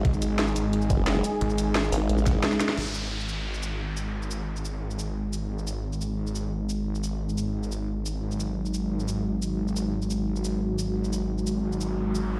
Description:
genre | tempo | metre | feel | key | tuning
dark technical drum and bass | 176 BPM | 4/4 | straight | unclear | A4 = 439 Hz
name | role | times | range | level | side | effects
dark analog pad | sustained chords | 0.0-12.4 s | G#3 to G#4 | -32 LUFS | equal | chorus, sidechain pumping
formant-sweep wobble bass | bass | 0.0-2.4 s | F#1 to A1 | -28 LUFS | equal | chorus
snarling distorted saw bass | bass | 0.0-12.4 s | G#1 | -32 LUFS | equal | distortion, overdrive
drum and bass drum kit | drums | 0.0-12.2 s | crash cymbal, hi-hat, shaker, snare drum | -34 LUFS | equal | small room ambience
electronic kick drum | drums | 0.0-2.3 s | none | -27 LUFS | equal | overdrive, small room ambience
downlifter and riser | sound effects | 2.8-5.5, 11.4-12.4 s | none | -40 LUFS | equal | none
room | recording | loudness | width
light reverb | played on a big sound system in a bare room, stone room reverb | -28 LUFS | mono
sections
0.0-2.8 A section; 2.8-12.4 B section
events
drop 0.0-2.8; drum fill 2.5; band accent 2.7; riser 11.4-12.4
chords
0.0 G#5

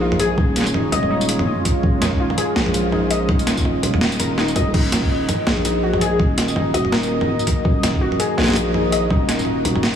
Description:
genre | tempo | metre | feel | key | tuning
half-time drum and bass | 165 BPM | 4/4 | swing 57% on 16ths, half-time | Eb minor | A4 = 441 Hz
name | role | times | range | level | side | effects
deep dark ambient pad | sustained chords | 0.0-10.0 s | Ab3 to Eb5 | -25 LUFS | equal | chorus, built-in reverb, sidechain pumping
warbly dusty pluck | arpeggios | 0.0-9.8 s | Eb4 to Eb5 | -25 LUFS | left 4 dB | chorus, tape echo
growling 808-style bass | bass | 0.0-10.0 s | Eb1 to Bb1 | -21 LUFS | equal | tube saturation
boom bap sampler-style drum kit | drums | 0.1-9.9 s | crash cymbal, hi-hat, snare drum, tambourine, toms | -21 LUFS | right 1 dB | overdrive
electronic kick drum | drums | 0.4-9.2 s | none | -20 LUFS | equal | overdrive
bell-like FM electric piano | melody | 6.7-7.4 s | Gb4 to Bb4 | -29 LUFS | right 3 dB | chorus, cassette tape, tape echo
room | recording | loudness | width
light reverb | heavily compressed radio sound, small room ambience | -16 LUFS | side -8 dB against mid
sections
0.0-10.0 A section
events
none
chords
0.0 Db/Eb; 4.7 Ebm

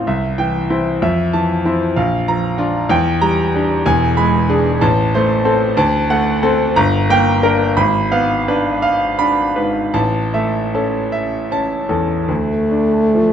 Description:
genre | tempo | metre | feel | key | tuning
classical, romantic duo for French horn and grand piano | 45-66 BPM (dotted quarters) | 6/8 | rubato | D minor | A4 = 440 Hz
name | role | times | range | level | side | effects
clear grand piano | accompaniment | 0.0-13.3 s | E1 to B5 | -14 LUFS | equal | none
mellow French horn | melody | 12.3-13.3 s | A3 | -14 LUFS | equal | none
room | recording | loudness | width
moderate recital hall reverb, RT60 1.6 s | close, detailed microphones | -14 LUFS | side -8 dB against mid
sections
0.0-12.3 A section; 12.3-13.3 B section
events
none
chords
0.1 C; 1.0 Fmaj7; 2.0 Bb; 2.9 Em7b5; 3.9 E7; 4.8 Am; 5.8 D7; 6.8 Gm; 7.8 G#dim7; 9.9 A; 12.3 Dm

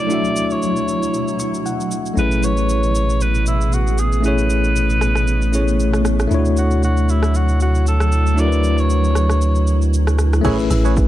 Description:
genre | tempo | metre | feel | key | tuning
amapiano | 116 BPM | 4/4 | swing 55% on 16ths | A major | A4 = 440 Hz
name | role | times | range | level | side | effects
edgy alto saxophone | melody | 0.0-9.8 s | E4 to D5 | -23 LUFS | equal | digital delay
bell-like tine electric piano | accompaniment | 0.0-11.1 s | A3 to C#6 | -21 LUFS | left 3 dB | medium stereo tremolo
granular cloud pad | sustained chords | 0.0-10.4 s | D2 to G#4 | -25 LUFS | equal | built-in reverb
deep house drum kit | drums | 0.1-11.1 s | crash cymbal, hi-hat, kick drum, rim click, shaker | -26 LUFS | right 1 dB | none
punchy sub bass | bass | 2.2-10.4 s | A1 to D2 | -16 LUFS | right 1 dB | none
percussive organ stab | stabs | 10.4-11.0 s | G#4 to C#5 | -25 LUFS | right 9 dB | chorus, digital delay
deep log drum bass | bass | 10.4-11.1 s | A1 | -17 LUFS | right 1 dB | none
agogo bells | percussion | 10.4-10.8 s | none | -32 LUFS | left 4 dB | none
room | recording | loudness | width
little or no reverb | none | -15 LUFS | side -13 dB against mid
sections
0.0-10.4 A section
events
tine electric piano fill 1.1-2.2; kick muted 8.4-10.4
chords
0.0 Dmaj9; 2.2 Amaj9; 6.3 Dmaj9; 10.4 Amaj9

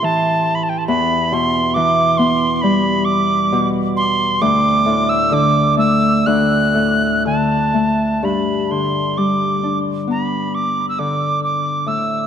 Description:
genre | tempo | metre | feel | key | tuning
celtic folk, Celtic slow air | 59-70 BPM | 4/4 | rubato | G major | A4 = 439 Hz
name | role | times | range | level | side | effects
wooden whistle | melody | 0.0-12.3 s | G5 to F#6 | -18 LUFS | right 2 dB | none
Celtic harp | accompaniment | 0.0-12.3 s | D2 to G4 | -17 LUFS | left 1 dB | none
room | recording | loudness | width
wet cathedral reverb, RT60 4.4 s | none | -14 LUFS | side -8 dB against mid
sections
0.0-8.2 A section; 8.2-12.3 A section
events
none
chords
0.0 Am7; 0.9 Em; 4.4 D5; 8.2 G

